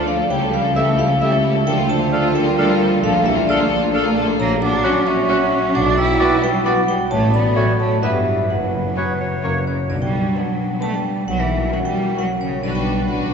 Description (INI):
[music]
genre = cinematic, playful, whimsical film cue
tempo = 132 BPM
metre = 3/4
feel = straight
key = B minor from 4.4 s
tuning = A4 = 439 Hz
[part]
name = vibraphone with medium hard mallets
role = melody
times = 0.0-13.3 s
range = C#5 to E6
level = -23 LUFS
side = right 2 dB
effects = none
[part]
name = warm studio violin section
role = melody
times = 0.0-13.3 s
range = C#4 to D5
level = -28 LUFS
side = left 4 dB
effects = none
[part]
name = clear studio violin section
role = second line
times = 0.0-13.3 s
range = Bb3 to F#4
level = -31 LUFS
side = left 2 dB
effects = none
[part]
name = mellow hollow silver concert flute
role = second line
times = 0.0-9.7 s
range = F4 to G5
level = -27 LUFS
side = left 1 dB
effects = none
[part]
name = rich studio viola section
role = accompaniment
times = 0.0-13.3 s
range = F3 to D4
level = -29 LUFS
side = right 1 dB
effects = none
[part]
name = mellow French horn section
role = sustained chords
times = 0.0-13.3 s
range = F#3 to F#4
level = -25 LUFS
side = left 2 dB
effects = none
[part]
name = concert harp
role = arpeggios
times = 0.0-13.3 s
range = F#2 to C#5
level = -26 LUFS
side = left 4 dB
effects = none
[part]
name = clear studio cello section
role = bass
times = 0.0-13.3 s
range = C#3 to E4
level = -23 LUFS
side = right 1 dB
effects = none
[part]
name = rich studio double bass section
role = bass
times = 0.0-13.3 s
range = F#1 to D2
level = -26 LUFS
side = right 1 dB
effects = none
[part]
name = warm tuba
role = bass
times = 0.0-13.3 s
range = F#1 to D2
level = -27 LUFS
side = right 2 dB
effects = none
[part]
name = clear oboe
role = second line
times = 0.8-9.6 s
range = B4 to F#5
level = -28 LUFS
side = right 2 dB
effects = none
[part]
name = warm clarinet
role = second line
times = 0.8-9.8 s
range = F#4 to C#5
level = -30 LUFS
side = left 2 dB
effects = none
[part]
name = warm bassoon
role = accompaniment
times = 0.8-9.6 s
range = A3 to E4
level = -29 LUFS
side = equal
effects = none
[sound]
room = wet church reverb, RT60 3.7 s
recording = recorded in a church or concert hall, nothing above 7.9 kHz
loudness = -16 LUFS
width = side -6 dB against mid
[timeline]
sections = 0.0-9.9 A section; 9.9-13.3 B section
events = none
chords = 0.3 A7/C#; 1.7 Dm; 3.0 Bbmaj7; 4.4 F#/A#; 5.7 Bm; 7.1 F#m/A; 8.0 Em/G; 8.5 F#sus4; 9.4 F#; 9.9 Bm; 11.3 F#7/B; 12.6 Bm